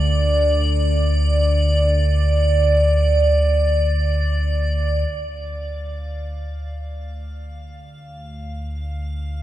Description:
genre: dark ambient drone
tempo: free time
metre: none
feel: none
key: D minor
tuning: A4 = 440 Hz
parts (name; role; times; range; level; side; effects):
- analog drone; drone; 0.0-9.4 s; D2 to D3; -19 LUFS; equal; chorus
- icy glass pad; texture; 0.0-9.4 s; D5 to F5; -22 LUFS; right 2 dB; chorus, built-in reverb
room: wet huge ambient reverb, RT60 7.3 s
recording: cassette tape, small room reverb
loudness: -17 LUFS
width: side -13 dB against mid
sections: 0.0-5.1 A section; 5.1-9.4 A section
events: fade-in on ambient pad 5.1-9.4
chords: 0.0 N.C.; 5.1 Dm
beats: free time

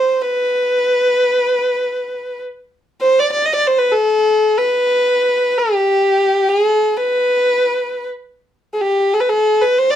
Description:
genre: Persian modal ensemble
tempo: free time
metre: none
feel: none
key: unclear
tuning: A4 = 441 Hz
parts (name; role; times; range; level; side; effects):
- rich kamancheh; solo; 0.0-10.0 s; G4 to Eb5; -13 LUFS; equal; none
room: moderate studio reverb, RT60 0.5 s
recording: dark, warm production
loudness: -13 LUFS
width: side -10 dB against mid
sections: 0.0-10.0 A section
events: none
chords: none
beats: free time

